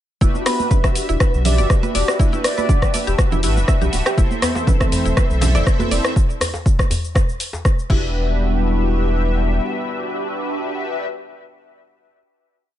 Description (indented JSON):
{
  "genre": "afro house",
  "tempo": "121 BPM",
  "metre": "4/4",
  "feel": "swing 53% on 16ths",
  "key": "E minor",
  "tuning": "A4 = 438 Hz",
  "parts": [
    { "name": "mallet-like synth pluck", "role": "arpeggios", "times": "0.2-8.4 s", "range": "B3 to E5", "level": "-27 LUFS", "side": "equal", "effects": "chorus, sidechain pumping, tape echo" },
    { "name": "mellow synth brass", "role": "stabs", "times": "0.2-11.1 s", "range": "C4 to E5", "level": "-24 LUFS", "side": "left 2 dB", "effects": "chorus, phaser, sidechain pumping, tape echo" },
    { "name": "warm sub bass", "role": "bass", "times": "0.2-9.6 s", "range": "D1 to B1", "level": "-19 LUFS", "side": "equal", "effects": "sidechain pumping" },
    { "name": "deep house drum kit", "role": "drums", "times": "0.2-8.0 s", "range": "crash cymbal, hi-hat, rim click, shaker", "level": "-24 LUFS", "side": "left 1 dB", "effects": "none" },
    { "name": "electronic kick drum", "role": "drums", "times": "0.2-8.0 s", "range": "none", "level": "-16 LUFS", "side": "equal", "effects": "none" },
    { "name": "congas", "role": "percussion", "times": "0.2-6.0 s", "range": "none", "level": "-27 LUFS", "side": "right 7 dB", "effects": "none" },
    { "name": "expressive synth lead", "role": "melody", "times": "0.5-2.9 s", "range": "B4 to D5", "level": "-26 LUFS", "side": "right 2 dB", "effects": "lush chorus, tape echo" },
    { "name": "dark analog pad", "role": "sustained chords", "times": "4.2-11.1 s", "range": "E3 to C5", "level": "-26 LUFS", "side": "equal", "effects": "chorus, sidechain pumping" },
    { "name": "djembe", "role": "percussion", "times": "4.4-8.0 s", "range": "none", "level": "-27 LUFS", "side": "left 1 dB", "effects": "none" }
  ],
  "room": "digital ambience",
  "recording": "nothing above 10.9 kHz",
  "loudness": "-16 LUFS",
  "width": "side -12 dB against mid",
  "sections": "0.2-8.1 drop; 8.1-12.1 final hit",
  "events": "drop 0.2-8.1",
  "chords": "0.2 Em7; 4.2 Am/E; 7.9 Em7"
}